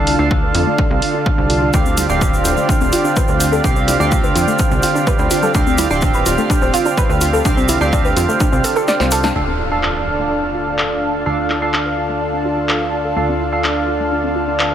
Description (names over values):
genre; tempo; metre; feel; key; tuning
melodic techno; 126 BPM; 4/4; straight; D minor; A4 = 440 Hz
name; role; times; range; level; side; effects
lush unison pad; sustained chords; 0.0-14.7 s; D3 to A4; -21 LUFS; left 1 dB; chorus, sidechain pumping
warbly dusty pluck; arpeggios; 0.0-14.7 s; A3 to D5; -22 LUFS; equal; chorus, sidechain pumping, dub echo
sync-sweep polysynth; stabs; 0.0-14.7 s; C4 to F5; -19 LUFS; right 3 dB; chorus, sidechain pumping, dub echo
plucky analog bass; bass; 0.0-14.7 s; D1 to F2; -22 LUFS; equal; sidechain pumping
bowed-like drone; drone; 0.0-9.4 s; D3; -30 LUFS; left 1 dB; none
punchy analog drum machine; drums; 0.1-14.7 s; congas, handclaps, hi-hat, snare drum; -23 LUFS; equal; low-pass filter on hats, studio reverb, low-pass filter on perc, low-pass filter on snare
electronic kick drum; drums; 0.3-8.5 s; none; -17 LUFS; equal; studio reverb
egg shaker; percussion; 1.7-9.3 s; none; -26 LUFS; left 4 dB; none
impact; sound effects; 9.4-11.3 s; none; -28 LUFS; equal; none
room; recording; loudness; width
light reverb; none; -14 LUFS; side -10 dB against mid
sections
0.0-9.4 A section; 9.4-14.7 B section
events
filter sweep on synth arpeggio sound 0.0-9.4; kick drops out 8.9-9.4; drum fill 8.9-9.4; band accent 9.2; impact 9.4-11.3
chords
0.0 Dm; 1.7 Fsus2/D; 9.4 Dm